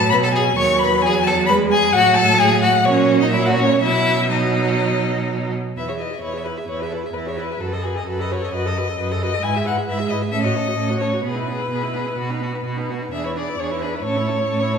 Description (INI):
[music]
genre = quick classical-period movement for string quartet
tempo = 130 BPM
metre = 4/4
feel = rubato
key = E major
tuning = A4 = 439 Hz
[part]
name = rich violin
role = melody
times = 0.0-14.8 s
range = G#4 to C#6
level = -21 LUFS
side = left 5 dB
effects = none
[part]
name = rich viola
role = accompaniment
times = 0.0-14.8 s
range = F#3 to A4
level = -24 LUFS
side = right 4 dB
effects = none
[part]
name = clear cello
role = bass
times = 0.0-14.8 s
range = D#2 to B2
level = -24 LUFS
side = right 3 dB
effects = none
[part]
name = clear violin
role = second line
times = 0.1-14.8 s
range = C#4 to E5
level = -24 LUFS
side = right 2 dB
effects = none
[sound]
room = wet recital hall reverb, RT60 1.4 s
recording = recorded in a church or concert hall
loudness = -17 LUFS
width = side -6 dB against mid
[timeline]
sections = 0.0-5.8 A section; 5.8-14.8 B section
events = none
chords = 0.1 B; 1.0 E; 1.9 F#m/A; 2.9 F#/A#; 3.8 B; 5.8 E; 7.6 B7/F#; 9.4 E/G#; 10.3 F#m/A; 11.2 E/B; 12.2 B; 13.1 E7; 14.0 A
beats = | 0.12 0.58 1.03 1.49 | 1.94 2.40 2.85 3.33 | 3.81 4.30 4.80 5.29 | 5.77 6.23 6.69 7.15 | 7.61 8.07 8.53 8.99 | 9.43 9.87 10.32 10.77 | 11.24 11.71 12.19 12.65 | 13.13 13.59 14.05 14.50